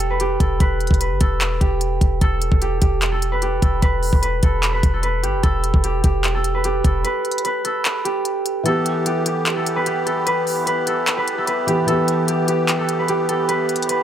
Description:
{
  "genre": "hip hop, trap",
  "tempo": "149 BPM",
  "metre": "4/4",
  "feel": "half-time",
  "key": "E minor",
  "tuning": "A4 = 440 Hz",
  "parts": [
    { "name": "concert harp", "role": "melody", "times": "0.0-14.0 s", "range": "G4 to B4", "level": "-21 LUFS", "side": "right 2 dB", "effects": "low-pass filter, digital delay" },
    { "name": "clean 808-style bass", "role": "bass", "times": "0.0-7.0 s", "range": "E1 to G1", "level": "-21 LUFS", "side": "equal", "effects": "none" },
    { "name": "trap drum kit", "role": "drums", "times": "0.0-14.0 s", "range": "handclaps, hi-hat, kick drum", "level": "-20 LUFS", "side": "equal", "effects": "none" },
    { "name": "felt-muted upright piano", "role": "accompaniment", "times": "8.6-14.0 s", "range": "E3 to G4", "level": "-23 LUFS", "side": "left 2 dB", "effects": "low-pass filter" },
    { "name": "musette accordion", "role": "sustained chords", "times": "8.7-14.0 s", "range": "E3 to G4", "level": "-27 LUFS", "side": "left 1 dB", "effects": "none" }
  ],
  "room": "light reverb, small room ambience",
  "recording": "none",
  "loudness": "-17 LUFS",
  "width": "side -10 dB against mid",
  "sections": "0.0-14.0 A section",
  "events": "break 7.0-8.7; kick muted 8.7-14.0",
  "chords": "0.0 Em",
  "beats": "0.20 | 0.60 1.01 1.41 1.81 | 2.21 2.62 3.02 3.42 | 3.82 4.23 4.63 5.03 | 5.43 5.84 6.24 6.64 | 7.05 7.45 7.85 8.25 | 8.66 9.06 9.46 9.87 | 10.27 10.67 11.07 11.47 | 11.88 12.28 12.68 13.09 | 13.49 13.89"
}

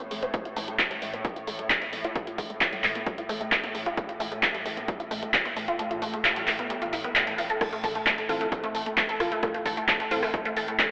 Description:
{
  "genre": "driving peak-time techno",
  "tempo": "132 BPM",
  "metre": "4/4",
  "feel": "straight",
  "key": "unclear",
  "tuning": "A4 = 440 Hz",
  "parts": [
    { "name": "resonant blip pluck", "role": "riff", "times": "0.0-10.8 s", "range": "G3 to A4", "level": "-31 LUFS", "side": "equal", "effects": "phaser, tube saturation, lush chorus, sidechain pumping, tape echo" },
    { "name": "saturated sub bass", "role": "bass", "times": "0.0-10.7 s", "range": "A1", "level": "-52 LUFS", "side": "equal", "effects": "sidechain pumping, low-pass filter" },
    { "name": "swarming drone", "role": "drone", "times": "0.0-10.9 s", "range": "A2", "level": "-37 LUFS", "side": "equal", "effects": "built-in reverb, sidechain pumping" },
    { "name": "punchy analog drum machine", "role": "drums", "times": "0.0-10.9 s", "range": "crash cymbal, handclaps, hi-hat, rim click", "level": "-26 LUFS", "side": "equal", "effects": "none" },
    { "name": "electronic kick drum", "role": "drums", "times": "0.3-10.9 s", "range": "none", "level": "-32 LUFS", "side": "equal", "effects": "none" },
    { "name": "wavetable chord stab", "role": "stabs", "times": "8.3-10.2 s", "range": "E3 to A4", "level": "-34 LUFS", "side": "equal", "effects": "sidechain pumping, tape echo" }
  ],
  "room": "wet lush hall reverb, RT60 1.9 s, digital ambience",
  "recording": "dreamy mix soaked in reverb, telephone sound",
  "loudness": "-24 LUFS",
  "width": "side -36 dB against mid",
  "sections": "0.0-7.6 A section; 7.6-10.9 B section",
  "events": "filter sweep on synth arpeggio sound 0.0-7.6; kick drops out 5.8-7.6; drop 7.6-10.9",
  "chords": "0.0 N.C.; 7.6 Am",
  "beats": "| 0.34 0.79 1.25 1.70 | 2.16 2.61 3.06 3.52 | 3.97 4.43 4.88 5.34 | 5.79 6.25 6.70 7.16 | 7.61 8.06 8.52 8.97 | 9.43 9.88 10.34 10.79"
}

